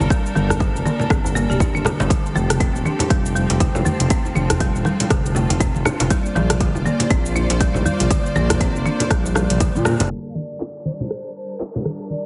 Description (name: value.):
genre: afro house.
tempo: 120 BPM.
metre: 4/4.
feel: swing 58% on 16ths.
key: G minor.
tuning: A4 = 440 Hz.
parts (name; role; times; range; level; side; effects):
rich symphonic string section; sustained chords; 0.0-12.3 s; F3 to A5; -30 LUFS; equal; sidechain pumping, low-pass filter.
smooth gliding synth bass; bass; 0.0-10.1 s; D1 to Bb2; -24 LUFS; equal; sidechain pumping.
afro-pop drum kit; drums; 0.0-12.0 s; cabasa, crash cymbal, handclaps, hi-hat, rim click, toms; -27 LUFS; equal; studio reverb.
djembe; percussion; 0.0-10.1 s; none; -31 LUFS; equal; none.
folk marimba with hard mallets; arpeggios; 0.1-9.9 s; D3 to G4; -28 LUFS; equal; sidechain pumping, tape echo.
electronic kick drum; drums; 0.1-9.7 s; none; -22 LUFS; equal; overdrive, studio reverb.
congas; percussion; 0.4-12.2 s; none; -26 LUFS; equal; none.
hollow bass bansuri; melody; 10.3-12.3 s; C5 to F5; -35 LUFS; equal; tape echo.
room: light reverb, studio reverb.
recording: heavily compressed radio sound, low-pass filter, nothing above 11.0 kHz.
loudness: -19 LUFS.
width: mono.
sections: 0.0-10.1 A section; 10.1-12.3 B section.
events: drum fill 9.6-10.1; band accent 9.9; filter sweep on string section 10.1-12.3; filter sweep 10.1-12.3.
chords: 0.0 Gm; 2.1 F; 6.1 Bb; 10.1 Gm.